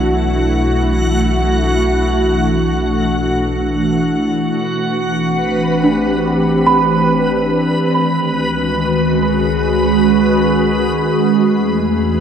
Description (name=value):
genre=ambient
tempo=free time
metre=none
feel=none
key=unclear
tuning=A4 = 441 Hz
part: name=soft additive organ-like pad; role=sustained chords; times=0.0-12.2 s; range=B2 to G#4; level=-15 LUFS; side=equal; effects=ensemble chorus, built-in reverb
part: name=round analog bass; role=bass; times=0.0-12.2 s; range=A1 to E2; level=-23 LUFS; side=equal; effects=none
part: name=bowed-like drone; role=drone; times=0.0-4.6 s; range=A3 to E4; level=-24 LUFS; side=left 1 dB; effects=built-in reverb
part: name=backwards swelling texture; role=texture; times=0.0-12.2 s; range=F#4 to B5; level=-20 LUFS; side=equal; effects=built-in reverb
part: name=worn celesta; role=arpeggios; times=5.8-9.3 s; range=D4 to B5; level=-18 LUFS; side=right 3 dB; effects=diffuse ambient delay
room=wet scoring stage reverb, RT60 2.1 s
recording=none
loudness=-13 LUFS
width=side -7 dB against mid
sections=0.0-4.6 A section; 4.6-12.2 B section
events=fade-in on analog synth bass 4.6-12.2; filter sweep on ambient pad 4.6-12.2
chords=0.0 Bm7; 4.6 Am; 7.9 C#5; 11.3 Em7